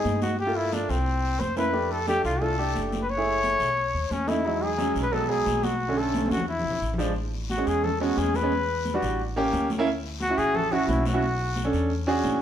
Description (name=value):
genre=Afro-Cuban jazz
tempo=177 BPM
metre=4/4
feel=straight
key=A major from 7.2 s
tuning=A4 = 439 Hz
part: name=mellow trumpet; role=melody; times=0.0-11.7 s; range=C4 to C#5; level=-26 LUFS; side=left 2 dB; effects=none
part: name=clear upright piano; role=accompaniment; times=0.0-12.4 s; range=D3 to A4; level=-27 LUFS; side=right 2 dB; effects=none
part: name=upright bass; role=bass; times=0.0-12.4 s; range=F#1 to G2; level=-31 LUFS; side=equal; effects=none
part: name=congas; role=percussion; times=0.0-12.4 s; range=none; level=-33 LUFS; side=left 1 dB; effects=none
part: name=guiro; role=percussion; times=0.0-12.4 s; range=none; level=-42 LUFS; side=left 6 dB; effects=none
room=moderate large studio reverb, RT60 0.9 s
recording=band playing live in one room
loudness=-23 LUFS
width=side -10 dB against mid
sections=0.0-7.2 A section; 7.2-12.4 B section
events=drum fill 6.1-7.2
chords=0.4 Gm7; 1.1 C7b9; 1.7 F6; 3.1 F#m7; 3.8 B9; 4.5 Emaj9; 5.8 Bm7; 6.5 E7b9; 7.2 Amaj9; 8.5 Em9; 9.2 A7b9; 9.9 Dmaj9; 11.2 Bm9; 11.9 E13